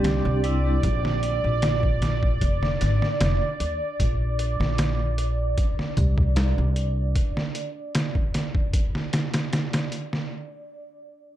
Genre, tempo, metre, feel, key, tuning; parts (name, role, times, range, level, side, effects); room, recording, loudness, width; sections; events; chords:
trip hop; 76 BPM; 4/4; straight; A4 = 440 Hz
vibraphone with hard mallets; accompaniment; 0.0-0.8 s; G3 to G4; -28 LUFS; equal; tremolo, tape echo
deep dark ambient pad; sustained chords; 0.0-10.3 s; D5; -30 LUFS; right 2 dB; chorus, built-in reverb, vintage 12-bit sampler grit
upright bass; bass; 0.0-7.1 s; F1 to Eb2; -24 LUFS; equal
trip hop sampler-style drum kit; drums; 0.0-10.3 s; hi-hat, kick drum, snare drum; -25 LUFS; equal; overdrive
little or no reverb; dark, warm production; -22 LUFS; side -13 dB against mid
0.0-10.3 A section
0.0 Cadd9; 0.8 Bb; 2.4 N.C.; 4.0 Bb; 5.6 Csus2; 7.2 N.C.